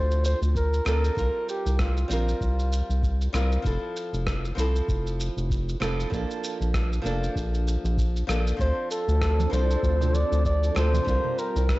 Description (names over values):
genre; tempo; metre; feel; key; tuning
sunset chillout; 97 BPM; 4/4; swing 57% on 16ths; D minor; A4 = 440 Hz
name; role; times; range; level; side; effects
mellow flugelhorn; melody; 0.0-3.3, 8.6-11.8 s; F4 to D5; -29 LUFS; equal; tape echo
flamenco guitar; accompaniment; 0.0-11.8 s; F3 to Bb4; -32 LUFS; moving between left 3 dB and right 5 dB; auto-pan, cassette tape, tape echo
round analog bass; bass; 0.0-11.8 s; F1 to D2; -24 LUFS; equal; none
electronic shaker and rim click; drums; 0.1-11.8 s; none; -35 LUFS; equal; cassette tape
electronic kick drum; drums; 0.6-11.8 s; none; -29 LUFS; equal; overdrive, cassette tape
soft string machine; sustained chords; 9.0-11.8 s; F3 to Bb4; -34 LUFS; equal; phaser, ensemble chorus, vintage 12-bit sampler grit, cassette tape
congas; percussion; 9.4-11.3 s; none; -35 LUFS; right 9 dB; none
room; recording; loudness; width
light reverb; home recording on cassette, nothing above 7.9 kHz; -23 LUFS; side -19 dB against mid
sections
0.0-11.8 A section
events
none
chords
0.0 Dm7; 1.2 C7sus4; 3.6 Fmaj7; 6.1 Bbmaj7; 8.6 Dm7; 11.1 C7sus4